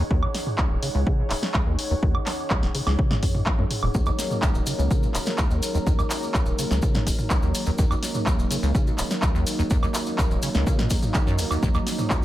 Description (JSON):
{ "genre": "acid house", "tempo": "125 BPM", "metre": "4/4", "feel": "straight", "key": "Eb minor", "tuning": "A4 = 440 Hz", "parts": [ { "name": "acid bass, square", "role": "riff", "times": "0.0-12.2 s", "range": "Eb1 to Eb3", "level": "-27 LUFS", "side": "equal", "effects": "tube saturation, wide subtle chorus, vintage 12-bit sampler grit, sidechain pumping, dub echo" }, { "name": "deep dark ambient pad", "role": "texture", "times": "0.0-12.2 s", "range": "Eb4 to Gb5", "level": "-34 LUFS", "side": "equal", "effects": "chorus, built-in reverb, sidechain pumping" }, { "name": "electronic kick drum", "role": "drums", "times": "0.1-12.2 s", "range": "none", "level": "-23 LUFS", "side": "equal", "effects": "none" }, { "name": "punchy analog drum machine", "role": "drums", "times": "0.2-12.2 s", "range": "handclaps, hi-hat, snare drum, toms, woodblock", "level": "-28 LUFS", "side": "equal", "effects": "dub echo" }, { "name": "warm analog pad", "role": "sustained chords", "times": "3.9-12.2 s", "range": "F3 to Bb4", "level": "-30 LUFS", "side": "right 1 dB", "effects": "chorus, sidechain pumping" }, { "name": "maracas", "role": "percussion", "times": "3.9-12.2 s", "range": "none", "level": "-35 LUFS", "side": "left 2 dB", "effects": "dub echo" } ], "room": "light reverb, digital ambience", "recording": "echo-heavy mix", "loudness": "-21 LUFS", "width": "side -14 dB against mid", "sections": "0.0-12.2 A section", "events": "fade-in on ambient pad 0.0-12.2; filter sweep on acid bass 0.0-12.2; drum fill 3.5-3.9", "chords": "0.0 Ebm" }